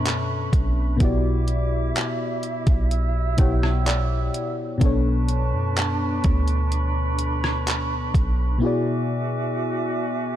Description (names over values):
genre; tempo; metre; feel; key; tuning
contemporary R&B; 63 BPM; 4/4; straight; B minor; A4 = 436 Hz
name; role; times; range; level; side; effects
mellow FM electric piano; accompaniment; 0.0-10.4 s; B2 to G5; -25 LUFS; left 2 dB; chorus
small flute group; sustained chords; 0.0-10.4 s; D4 to E6; -29 LUFS; right 4 dB; none
warm 808-style bass; bass; 0.0-8.6 s; B1 to F#2; -23 LUFS; equal; none
detuned 8-bit digital drum machine; drums; 0.1-8.4 s; handclaps, hi-hat, kick drum, rim click; -23 LUFS; equal; overdrive
room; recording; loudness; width
little or no reverb; dark, warm production; -20 LUFS; side -11 dB against mid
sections
0.0-10.4 A section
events
FM electric piano fill 2.9-4.8; drums muted 8.6-10.4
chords
0.0 Bm9; 1.0 Em9/B; 4.8 Bm9; 8.6 E9/B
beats
0.05 | 1.00 1.96 2.91 3.86 | 4.81 5.76 6.72 7.67 | 8.62 9.57